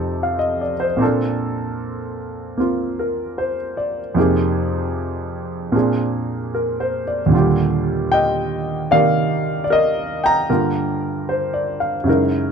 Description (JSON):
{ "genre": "jazz ballad", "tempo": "76 BPM", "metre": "4/4", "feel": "swing 68% on 8ths", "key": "unclear", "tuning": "A4 = 439 Hz", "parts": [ { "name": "warm concert grand piano", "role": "solo", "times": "0.0-12.5 s", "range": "Eb2 to Bb5", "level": "-17 LUFS", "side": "right 1 dB", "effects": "none" } ], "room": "little or no reverb", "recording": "close, detailed microphones", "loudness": "-17 LUFS", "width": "side -6 dB against mid", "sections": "0.0-12.5 A section", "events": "none", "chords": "0.0 F9; 1.0 Bbmaj7; 4.2 Fm11; 5.7 Bb9; 7.3 Ebmaj9; 10.5 Gm7" }